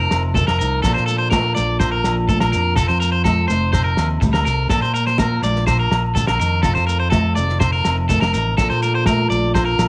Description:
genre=highlife guitar band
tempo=124 BPM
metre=4/4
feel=straight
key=Bb major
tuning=A4 = 440 Hz
part: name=picked steel-string acoustic guitar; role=accompaniment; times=0.0-9.9 s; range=Bb2 to Bb4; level=-28 LUFS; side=equal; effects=none
part: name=electric guitar at the edge of break-up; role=arpeggios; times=0.0-9.9 s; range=A4 to D5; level=-23 LUFS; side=equal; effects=slapback echo
part: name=fingered electric bass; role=bass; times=0.0-9.9 s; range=F1 to Bb2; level=-23 LUFS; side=equal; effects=none
part: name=warm soul drum kit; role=drums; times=0.1-9.9 s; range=kick drum, snare drum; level=-25 LUFS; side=equal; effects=none
part: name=agogo bells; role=percussion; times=0.1-9.9 s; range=none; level=-29 LUFS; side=equal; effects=none
part: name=shekere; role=percussion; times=0.1-9.9 s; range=none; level=-31 LUFS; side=equal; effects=none
part: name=congas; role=percussion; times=0.3-9.6 s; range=none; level=-28 LUFS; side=equal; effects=none
room=small room ambience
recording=none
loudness=-18 LUFS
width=mono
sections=0.0-9.9 A section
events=none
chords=0.0 F7; 0.8 Bbmaj7; 2.8 F7; 4.7 Bb; 6.6 F7; 8.6 Bbmaj7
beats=0.35 | 0.84 1.32 1.80 2.29 | 2.77 3.26 3.74 4.22 | 4.71 5.19 5.67 6.16 | 6.64 7.12 7.61 8.09 | 8.58 9.06 9.54

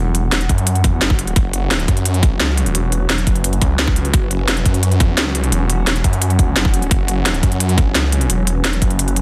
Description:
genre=dark technical drum and bass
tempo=173 BPM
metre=4/4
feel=straight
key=unclear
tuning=A4 = 440 Hz
part: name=swarming drone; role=sustained chords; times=0.0-9.2 s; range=F#3 to F#5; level=-27 LUFS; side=equal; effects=built-in reverb, sidechain pumping
part: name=snarling distorted saw bass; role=bass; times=0.0-9.2 s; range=E1 to F#2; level=-20 LUFS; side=equal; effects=distortion
part: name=drum and bass drum kit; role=drums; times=0.1-9.2 s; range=hi-hat, snare drum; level=-22 LUFS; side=equal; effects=small room ambience
part: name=electronic kick drum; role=drums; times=0.5-8.9 s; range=none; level=-18 LUFS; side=equal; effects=small room ambience
room=light reverb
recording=dense, heavily limited modern master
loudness=-16 LUFS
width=mono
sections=0.0-9.2 A section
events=kick drops out 9.0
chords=0.0 F#5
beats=0.32 0.67 1.01 | 1.36 1.71 2.06 2.40 | 2.75 3.10 3.44 3.79 | 4.14 4.48 4.83 5.18 | 5.52 5.87 6.22 6.56 | 6.91 7.26 7.60 7.95 | 8.30 8.64 8.99

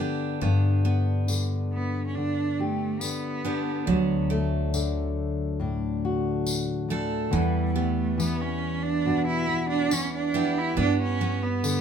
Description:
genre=acoustic folk duo or small band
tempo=70 BPM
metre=4/4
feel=straight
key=unclear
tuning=A4 = 440 Hz
part: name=fingerpicked steel-string acoustic guitar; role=accompaniment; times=0.0-11.8 s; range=D2 to G4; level=-28 LUFS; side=left 4 dB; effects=none
part: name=picked steel-string acoustic guitar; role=arpeggios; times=0.0-11.8 s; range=E3 to A4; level=-31 LUFS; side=right 6 dB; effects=none
part: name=upright bass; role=bass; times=0.0-11.8 s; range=D2 to G2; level=-30 LUFS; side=equal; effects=none
part: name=tambourine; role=percussion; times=1.3-11.8 s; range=none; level=-32 LUFS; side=left 3 dB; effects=none
part: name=rich cello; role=second line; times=1.7-11.8 s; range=G3 to E4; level=-28 LUFS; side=right 4 dB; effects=none
room=light reverb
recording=minimal, uncompressed stereo recording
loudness=-24 LUFS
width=side -8 dB against mid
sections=0.0-11.8 A section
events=cello solo 0.0-11.8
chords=0.0 G; 3.9 D; 7.3 Em; 10.8 G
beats=| 0.42 1.28 2.15 3.01 | 3.88 4.74 5.61 6.47 | 7.33 8.20 9.06 9.92 | 10.78 11.64

